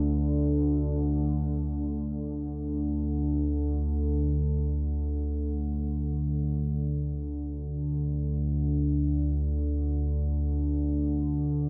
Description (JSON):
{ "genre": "ambient", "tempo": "free time", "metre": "none", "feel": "none", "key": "unclear", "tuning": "A4 = 439 Hz", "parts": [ { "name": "analog drone", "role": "solo", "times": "0.0-11.7 s", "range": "D2 to D3", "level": "-28 LUFS", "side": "equal", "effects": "chorus, tape echo" } ], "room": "wet huge ambient reverb, RT60 7.3 s", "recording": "in a vast, echoing space", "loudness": "-29 LUFS", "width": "mono", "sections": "0.0-1.6 A section; 1.6-11.7 B section", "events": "none", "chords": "none" }